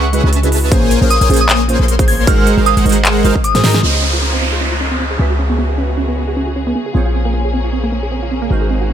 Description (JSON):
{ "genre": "future bass", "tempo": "154 BPM", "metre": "4/4", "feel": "swing 55% on 16ths, half-time", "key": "unclear", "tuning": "A4 = 441 Hz", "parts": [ { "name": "soft synth bell", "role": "melody", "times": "0.0-3.7 s", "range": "C#6 to Ab6", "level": "-19 LUFS", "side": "right 1 dB", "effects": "chorus, phaser, vintage 12-bit sampler grit, sidechain pumping, ping-pong delay" }, { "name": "big bright polysynth", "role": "riff", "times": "0.0-3.8 s", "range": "Ab3 to C6", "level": "-18 LUFS", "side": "equal", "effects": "chorus, sidechain pumping" }, { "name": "warm 808-style bass", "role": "bass", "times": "0.0-8.9 s", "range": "Ab1 to Ab2", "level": "-16 LUFS", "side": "equal", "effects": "sidechain pumping" }, { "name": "glassy digital keys", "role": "accompaniment", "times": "0.1-8.9 s", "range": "Bb2 to E5", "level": "-22 LUFS", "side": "right 4 dB", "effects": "chorus, sidechain pumping, dub echo" }, { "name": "big-room dance drum kit", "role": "drums", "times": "0.1-3.8 s", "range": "handclaps, hi-hat, snare drum", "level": "-19 LUFS", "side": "equal", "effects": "low-pass filter on hats, low-pass filter on snare" }, { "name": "electronic kick drum", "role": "drums", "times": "0.7-3.4 s", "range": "none", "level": "-13 LUFS", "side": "equal", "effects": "none" }, { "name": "rich studio string section", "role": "sustained chords", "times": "3.8-8.9 s", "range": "Db3 to C5", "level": "-26 LUFS", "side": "left 3 dB", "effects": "sidechain pumping, low-pass filter" }, { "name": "wide unison pluck", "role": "arpeggios", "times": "3.8-8.9 s", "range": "Bb3 to Ab4", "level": "-21 LUFS", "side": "right 3 dB", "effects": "sidechain pumping, dub echo" }, { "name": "downlifter", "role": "sound effects", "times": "3.8-6.9 s", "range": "none", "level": "-21 LUFS", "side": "right 1 dB", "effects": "none" } ], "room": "digital ambience", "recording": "none", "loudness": "-12 LUFS", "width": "side -10 dB against mid", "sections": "0.0-3.8 A section; 3.8-8.9 B section", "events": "drop 0.0-3.8; kick drops out 3.4-3.8; drum fill 3.5; filter sweep on synth arpeggio sound 3.8-8.9", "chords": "0.0 Amaj13/C#; 0.7 Bbm9; 2.3 Ab9; 3.8 Dbmaj9; 5.2 E69/C#; 6.9 Bbm9" }